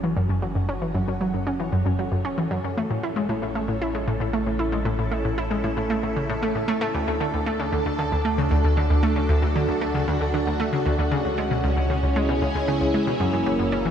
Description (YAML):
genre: ambient, sequencer-driven space music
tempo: 115 BPM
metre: 4/4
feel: straight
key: F# minor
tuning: A4 = 440 Hz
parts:
  - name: string machine, full ensemble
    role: sustained chords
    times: 0.0-13.9 s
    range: A#3 to A4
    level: -26 LUFS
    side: equal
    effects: ensemble chorus, shimmer reverb
  - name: analog pluck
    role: riff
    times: 0.0-13.9 s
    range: C#2 to E4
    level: -23 LUFS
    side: equal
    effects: chorus, cassette tape, ping-pong delay
  - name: round analog bass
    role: bass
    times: 0.0-13.9 s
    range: F#1 to D2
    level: -30 LUFS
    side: equal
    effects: none
room: wet cathedral reverb, RT60 5.7 s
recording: in a vast, echoing space, cassette tape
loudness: -21 LUFS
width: side -8 dB against mid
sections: 0.0-13.9 A section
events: fade-in on string machine 0.0-13.9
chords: 0.0 F#m; 2.8 A; 6.9 D; 11.1 C#m; 13.2 F#7